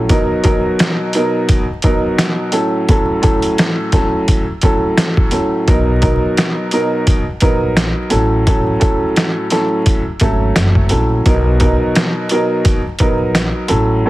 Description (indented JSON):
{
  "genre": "hip hop, boom-bap hip-hop",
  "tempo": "86 BPM",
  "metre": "4/4",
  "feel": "swing 56% on 16ths",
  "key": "B major",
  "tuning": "A4 = 440 Hz",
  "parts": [
    { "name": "warm upright piano", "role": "accompaniment", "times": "0.0-14.1 s", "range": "A2 to A#4", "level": "-15 LUFS", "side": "right 1 dB", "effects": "high-pass filter, low-pass filter" },
    { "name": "upright bass", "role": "bass", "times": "0.0-0.1, 5.7-14.0 s", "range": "F#1 to B1", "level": "-17 LUFS", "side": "equal", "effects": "none" },
    { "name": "trip hop sampler-style drum kit", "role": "drums", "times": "0.1-13.9 s", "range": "hi-hat, kick drum, snare drum", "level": "-15 LUFS", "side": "equal", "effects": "none" }
  ],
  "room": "little or no reverb",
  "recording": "heavily compressed radio sound, multiband compression, vinyl crackle",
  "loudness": "-12 LUFS",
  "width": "side -17 dB against mid",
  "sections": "0.0-14.1 A section",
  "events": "none",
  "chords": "0.1 Bmaj7; 2.5 A6; 5.7 Bmaj7; 8.1 A6; 11.3 Bmaj7",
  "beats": "| 0.10 0.79 1.49 2.19 | 2.89 3.58 4.28 4.98 | 5.68 6.38 7.07 7.77 | 8.47 9.17 9.86 10.56 | 11.26 11.96 12.65 13.35 | 14.05"
}